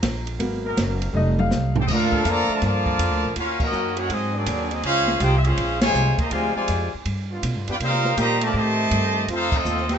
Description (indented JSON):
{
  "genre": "jazz, big band swing",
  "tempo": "162 BPM",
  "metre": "4/4",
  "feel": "swing 65% on 8ths",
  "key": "Bb major",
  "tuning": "A4 = 438 Hz",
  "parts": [
    { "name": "warm upright piano", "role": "accompaniment", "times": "0.0-1.7 s", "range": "E#3 to A#5", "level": "-27 LUFS", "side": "left 1 dB", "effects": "none" },
    { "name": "upright bass", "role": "bass", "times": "0.0-10.0 s", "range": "F1 to C3", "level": "-24 LUFS", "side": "right 1 dB", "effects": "none" },
    { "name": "open jazz drum kit", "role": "drums", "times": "0.0-10.0 s", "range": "crash cymbal, hi-hat, kick drum, ride cymbal, snare drum, toms", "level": "-28 LUFS", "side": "right 1 dB", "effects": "none" },
    { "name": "warm trombone section", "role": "sustained chords", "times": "0.6-10.0 s", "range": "Db3 to A#4", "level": "-32 LUFS", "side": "equal", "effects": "none" },
    { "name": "bright trumpet section", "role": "melody", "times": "1.8-10.0 s", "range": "C4 to Bb5", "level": "-23 LUFS", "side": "left 1 dB", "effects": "none" },
    { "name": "clear trombone section", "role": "second line", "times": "1.8-10.0 s", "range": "C3 to G4", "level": "-27 LUFS", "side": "right 1 dB", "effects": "none" }
  ],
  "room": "light reverb",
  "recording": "nothing above 8.0 kHz",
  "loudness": "-19 LUFS",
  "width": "side -8 dB against mid",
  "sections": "0.0-1.9 A section; 1.9-10.0 B section",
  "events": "upright piano solo 0.0-1.9; drum fill 1.1-1.9; band accent 3.5, 5.8, 9.5",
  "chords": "0.4 G#m9; 1.1 F7; 1.9 Bbmaj7; 3.4 Ebm7; 4.1 Ab7; 4.8 Dbmaj7; 6.3 Dm7b5; 7.1 G7; 7.8 Cm7; 9.3 F7"
}